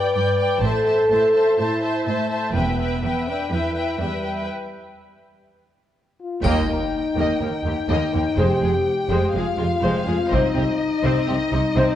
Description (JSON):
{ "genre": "cinematic, epic orchestral film score", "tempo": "124 BPM", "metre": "4/4", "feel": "straight", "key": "unclear", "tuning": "A4 = 441 Hz", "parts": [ { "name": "warm symphonic violin section", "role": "melody", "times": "0.0-12.0 s", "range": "Eb5 to A5", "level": "-29 LUFS", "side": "left 3 dB", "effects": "none" }, { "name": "warm symphonic violin section", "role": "second line", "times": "0.0-12.0 s", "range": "Eb4 to G5", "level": "-29 LUFS", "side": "left 3 dB", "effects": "none" }, { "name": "warm symphonic viola section", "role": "accompaniment", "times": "0.0-12.0 s", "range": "Ab3 to D5", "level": "-28 LUFS", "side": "right 2 dB", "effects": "none" }, { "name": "mellow French horn section", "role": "sustained chords", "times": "0.0-12.0 s", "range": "G3 to B4", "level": "-22 LUFS", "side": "left 2 dB", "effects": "none" }, { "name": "warm symphonic cello section", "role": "bass", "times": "0.0-11.8 s", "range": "Eb2 to C3", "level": "-27 LUFS", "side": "right 2 dB", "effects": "none" }, { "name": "rich symphonic double bass section", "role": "bass", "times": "0.6-3.0, 6.4-11.8 s", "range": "E1 to Eb2", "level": "-26 LUFS", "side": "right 2 dB", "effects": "none" }, { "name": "taiko ensemble", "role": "drums", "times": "6.4-7.4, 10.3-11.2 s", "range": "none", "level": "-27 LUFS", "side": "equal", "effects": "none" }, { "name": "triangle", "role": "percussion", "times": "6.4-7.4 s", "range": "none", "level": "-42 LUFS", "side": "left 3 dB", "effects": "none" }, { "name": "impact", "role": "sound effects", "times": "6.4-8.4 s", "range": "none", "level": "-34 LUFS", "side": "equal", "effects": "none" }, { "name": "timpani", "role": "percussion", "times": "8.4-9.1 s", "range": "F2", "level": "-29 LUFS", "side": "equal", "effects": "none" } ], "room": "moderate concert hall reverb, RT60 2.3 s", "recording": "worn, warbling old tape, cassette tape, warbly pitch drift", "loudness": "-18 LUFS", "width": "side -11 dB against mid", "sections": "0.0-6.4 A section; 6.4-12.0 B section", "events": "break 4.5-6.4; band accent 6.4-6.9; impact 6.4-8.4", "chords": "0.0 G; 0.6 Am; 2.6 Em; 4.5 N.C.; 6.4 Eb; 8.4 Fm; 10.3 Cm" }